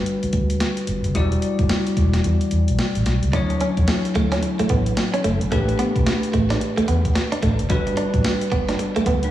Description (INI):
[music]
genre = R&B, new jack swing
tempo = 110 BPM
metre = 4/4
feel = swing 62% on 16ths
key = D major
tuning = A4 = 440 Hz
[part]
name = bell-like tine electric piano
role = accompaniment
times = 0.0-9.3 s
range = F#3 to D5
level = -23 LUFS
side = left 2 dB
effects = none
[part]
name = crisp 8-bit digital drum machine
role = drums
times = 0.1-9.3 s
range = hi-hat, kick drum, snare drum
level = -24 LUFS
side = equal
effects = none
[part]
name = vintage muted fingered electric bass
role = bass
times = 0.2-9.3 s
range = E1 to E2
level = -22 LUFS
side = equal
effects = none
[part]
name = direct-recorded clean electric guitar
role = riff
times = 3.3-9.2 s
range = G3 to D4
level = -24 LUFS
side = right 3 dB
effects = wide subtle chorus
[sound]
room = moderate lush hall reverb, RT60 2.4 s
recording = dreamy mix soaked in reverb, small room reverb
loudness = -18 LUFS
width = side -13 dB against mid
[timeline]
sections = 0.0-9.3 A section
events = kick muted 2.2-3.3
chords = 0.0 Gmaj7; 1.2 Em9; 3.3 Dmaj9; 5.5 A9sus4; 7.7 Gmaj7